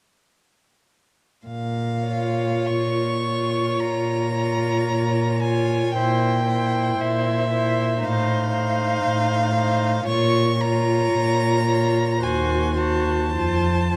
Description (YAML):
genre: classical, slow romantic movement for string quartet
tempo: 48-59 BPM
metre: 4/4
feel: rubato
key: Bb minor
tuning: A4 = 440 Hz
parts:
  - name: rich violin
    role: melody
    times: 1.5-14.0 s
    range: E5 to Db6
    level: -28 LUFS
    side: equal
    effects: none
  - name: dark cello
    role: bass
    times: 1.5-14.0 s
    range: Eb2 to Bb2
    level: -26 LUFS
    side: equal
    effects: none
  - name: warm violin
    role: second line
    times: 2.1-14.0 s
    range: C5 to Db5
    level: -29 LUFS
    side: equal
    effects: none
  - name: rich viola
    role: accompaniment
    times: 2.1-14.0 s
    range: Eb4 to Gb4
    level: -28 LUFS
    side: equal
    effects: none
room: moderate recital hall reverb, RT60 1.8 s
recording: close, detailed microphones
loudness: -22 LUFS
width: mono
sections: 1.5-14.0 A section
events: none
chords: 1.5 Bbm; 6.0 C7/Bb; 8.0 F7/A; 10.1 Bbm; 12.2 Cdim/Eb; 13.3 F